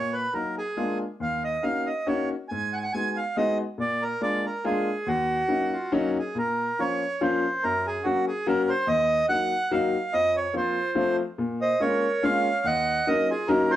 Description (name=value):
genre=musette waltz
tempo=142 BPM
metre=3/4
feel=swing 55% on 8ths, rubato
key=Eb minor, Bb minor from 6.4 s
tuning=A4 = 444 Hz
part: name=accordion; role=melody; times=0.0-13.8 s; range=F4 to Ab5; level=-25 LUFS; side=right 2 dB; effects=none
part: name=bright upright piano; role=accompaniment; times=0.0-13.7 s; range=Eb2 to Gb4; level=-27 LUFS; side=left 3 dB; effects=none
part: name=mellow clarinet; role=second line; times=10.6-13.8 s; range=F4 to Eb5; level=-28 LUFS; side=right 2 dB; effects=none
room=moderate studio reverb, RT60 0.6 s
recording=worn, warbling old tape, cassette tape, warbly pitch drift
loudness=-23 LUFS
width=side -12 dB against mid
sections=0.0-6.4 A section; 6.4-13.8 B section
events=none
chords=0.0 Ebm/Bb; 0.8 Bb7; 1.2 Ebm7; 2.5 Abm7; 3.8 Bb7; 5.1 Ebm7; 6.4 Bbm; 7.6 Gb; 8.9 Ebm; 10.1 Fsus4; 11.0 F; 11.4 Bbm7; 12.7 Ebm7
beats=0.33 0.77 | 1.21 1.64 2.08 | 2.51 2.94 3.37 | 3.79 4.21 4.64 | 5.06 5.49 5.92 | 6.36 6.78 7.20 | 7.62 8.04 8.46 | 8.88 9.29 9.70 | 10.12 10.54 10.96 | 11.38 11.81 12.23 | 12.65 13.07 13.48